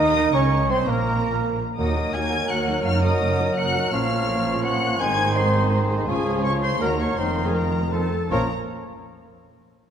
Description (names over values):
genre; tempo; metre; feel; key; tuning
classical; 166 BPM; 3/4; rubato; Bb minor; A4 = 436 Hz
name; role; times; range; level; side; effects
warm symphonic violin section; melody; 0.0-8.5 s; Ab5 to Ab6; -30 LUFS; left 3 dB; none
bright clarinet; second line; 0.0-8.5 s; Ab4 to Ab5; -32 LUFS; left 1 dB; none
bright silver concert flute; second line; 0.0-8.5 s; Ab4 to Bb5; -30 LUFS; left 2 dB; none
mellow cor anglais; second line; 0.0-8.5 s; Bb4 to Eb5; -28 LUFS; right 2 dB; none
warm symphonic violin section; second line; 0.0-8.5 s; Bb3 to Db5; -33 LUFS; left 2 dB; none
rich symphonic viola section; accompaniment; 0.0-8.5 s; Eb3 to Eb4; -32 LUFS; right 1 dB; none
warm bassoon; accompaniment; 0.0-8.5 s; Eb3 to Eb4; -27 LUFS; right 1 dB; none
dark French horn section; sustained chords; 0.0-8.5 s; Bb3 to Gb4; -33 LUFS; left 2 dB; none
warm symphonic cello section; bass; 0.0-8.5 s; Db2 to Eb3; -26 LUFS; right 1 dB; none
warm symphonic double bass section; bass; 0.0-8.5 s; F1 to Eb2; -29 LUFS; right 3 dB; none
room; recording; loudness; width
wet concert hall reverb, RT60 2.3 s; none; -19 LUFS; side -8 dB against mid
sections
0.0-8.3 A section; 8.3-9.4 B section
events
none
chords
0.0 N.C.; 0.7 Bbsus2; 1.8 Ebm; 2.9 Ebm/Gb; 3.9 Bbm; 5.0 Ab; 6.1 Db; 6.8 Ebm; 7.2 F7sus4; 7.9 F7; 8.3 Bbm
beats
0.33 | 0.70 1.06 1.42 | 1.78 2.14 2.50 | 2.86 3.21 3.57 | 3.93 4.29 4.64 | 5.00 5.36 5.72 | 6.08 6.44 6.81 | 7.18 7.55 7.92 | 8.31